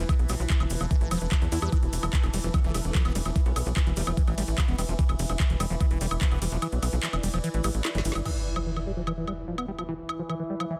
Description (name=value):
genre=psychedelic trance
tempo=147 BPM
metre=4/4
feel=straight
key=unclear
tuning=A4 = 440 Hz
part: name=overtone-sweeping drone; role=sustained chords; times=0.0-10.8 s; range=E3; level=-43 LUFS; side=equal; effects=chorus, built-in reverb, sidechain pumping
part: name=liquid acid bass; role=riff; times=0.0-10.8 s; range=E3 to E4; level=-36 LUFS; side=equal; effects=phaser, cassette tape, sidechain pumping, tape echo
part: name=tight sequencer bass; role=bass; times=0.0-8.2 s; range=E1 to E2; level=-31 LUFS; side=equal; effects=tube saturation
part: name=ethereal airy pad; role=texture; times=0.0-10.8 s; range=E4 to A5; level=-41 LUFS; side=equal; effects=ensemble chorus, built-in reverb, sidechain pumping
part: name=electronic kick drum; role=drums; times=0.1-6.3 s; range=none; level=-26 LUFS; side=equal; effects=overdrive
part: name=garage drum kit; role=drums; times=0.1-10.7 s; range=crash cymbal, handclaps, hi-hat, ride cymbal, snare drum, woodblock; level=-36 LUFS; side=equal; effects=overdrive
part: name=cabasa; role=percussion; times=0.1-8.2 s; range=none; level=-45 LUFS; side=equal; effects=none
part: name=formant-sweep wobble bass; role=second line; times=2.5-4.1 s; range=A3 to B3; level=-47 LUFS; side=equal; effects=none
part: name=impact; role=sound effects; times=8.3-9.9 s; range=none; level=-37 LUFS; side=equal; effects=none
room=digital ambience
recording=dense, heavily limited modern master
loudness=-27 LUFS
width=mono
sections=0.0-8.3 A section; 8.3-10.8 B section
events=drop 0.0-8.3; kick drops out 6.6-8.3; drum fill 7.8-8.3; impact 8.3-9.9; filter sweep on acid bass 8.3-10.8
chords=0.0 E5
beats=| 0.09 0.50 0.91 1.32 | 1.72 2.13 2.54 2.95 | 3.36 3.77 4.17 4.58 | 4.99 5.40 5.81 6.21 | 6.62 7.03 7.44 7.85 | 8.26 8.66 9.07 9.48 | 9.89 10.29 10.70